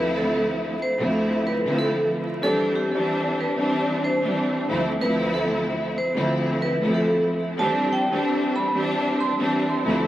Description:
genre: hip hop.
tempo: 93 BPM.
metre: 4/4.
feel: swing 57% on 16ths.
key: unclear.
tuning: A4 = 436 Hz.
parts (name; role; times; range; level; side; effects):
vibraphone with hard mallets; melody; 0.0-9.4 s; G4 to C6; -26 LUFS; right 1 dB; high-pass filter, low-pass filter, tape echo.
clear studio string section; accompaniment; 0.0-10.1 s; D2 to E4; -22 LUFS; equal; high-pass filter, low-pass filter, tape echo.
room: moderate plate reverb, RT60 3.3 s.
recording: echo-heavy mix, vinyl crackle.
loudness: -20 LUFS.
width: side -14 dB against mid.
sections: 0.0-7.6 A section; 7.6-10.1 B section.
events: none.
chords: 0.0 Dm7; 2.4 Cadd9; 4.7 Dm7; 7.6 Cadd9.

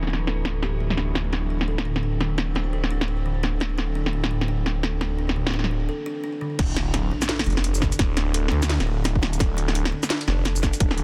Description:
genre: half-time drum and bass.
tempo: 171 BPM.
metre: 4/4.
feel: swing 59% on 16ths, half-time.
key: D minor.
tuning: A4 = 440 Hz.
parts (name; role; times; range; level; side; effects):
kalimba; arpeggios; 0.0-11.0 s; D3 to A4; -34 LUFS; equal; low-pass filter, digital delay.
phased detuned saw bass; bass; 0.0-11.0 s; D1 to D2; -26 LUFS; equal; phaser.
drum and bass drum kit; drums; 0.0-11.0 s; crash cymbal, hi-hat, shaker, snare drum; -29 LUFS; equal; low-pass filter on snare, low-pass filter on hats, low-pass filter on cymbals, low-pass filter on perc, low-pass filter on room.
metallic inharmonic drone; texture; 0.0-11.0 s; E3 to E4; -42 LUFS; equal; chorus, built-in reverb.
electronic kick drum; drums; 6.6-10.9 s; none; -25 LUFS; equal; overdrive.
impact; sound effects; 6.6-8.0 s; none; -34 LUFS; equal; none.
room: little or no reverb.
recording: dense, heavily limited modern master.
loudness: -24 LUFS.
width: mono.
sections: 0.0-6.6 A section; 6.6-11.0 B section.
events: break 5.9-6.6; drop 6.6-11.0; impact 6.6-8.0.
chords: 0.0 Dsus2; 6.6 Dm.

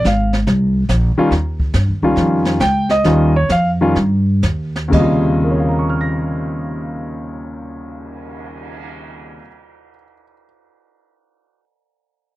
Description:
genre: jazz piano trio.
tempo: 120-142 BPM.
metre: 4/4.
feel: swing 66% on 8ths.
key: Eb mixolydian.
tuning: A4 = 440 Hz.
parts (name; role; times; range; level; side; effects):
warm grand piano; melody; 0.0-10.4 s; Eb2 to Bb6; -17 LUFS; left 1 dB; none.
upright bass; bass; 0.0-9.4 s; Ab1 to G2; -17 LUFS; equal; none.
jazz brush drum kit; drums; 0.0-8.8 s; brushed snare drum, crash cymbal, cymbal swell, hi-hat, kick drum, snare drum; -24 LUFS; equal; none.
room: little or no reverb.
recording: dry, close 1970s-style studio recording.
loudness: -14 LUFS.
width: side -17 dB against mid.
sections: 0.0-4.9 A section; 4.9-8.9 B section.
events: slowing down 1.3-4.9.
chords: 0.0 Bb7sus2; 1.3 Eb9; 4.9 Eb13.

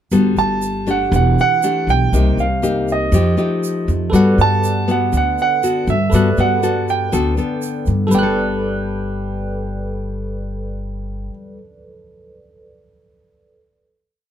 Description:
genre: bossa nova.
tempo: 120 BPM.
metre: 4/4.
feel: straight.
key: G major.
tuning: A4 = 440 Hz.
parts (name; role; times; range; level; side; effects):
nylon-string guitar; accompaniment; 0.1-11.7 s; C3 to A4; -20 LUFS; left 4 dB; none.
upright bass; bass; 0.1-11.3 s; E1 to G2; -19 LUFS; equal; none.
egg shaker; percussion; 0.1-8.2 s; none; -34 LUFS; right 6 dB; none.
warm concert grand piano; melody; 0.4-11.3 s; Eb5 to A5; -20 LUFS; right 6 dB; none.
barky tine electric piano; accompaniment; 4.1-14.3 s; A4 to F#6; -26 LUFS; right 2 dB; phaser.
room: little or no reverb.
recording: close, detailed microphones.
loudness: -15 LUFS.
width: side -9 dB against mid.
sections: 0.1-8.1 A section; 8.1-12.1 final chord.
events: none.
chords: 0.1 Gmaj9; 1.1 Em11; 2.1 Cm7; 3.1 F9; 4.1 Gmaj9.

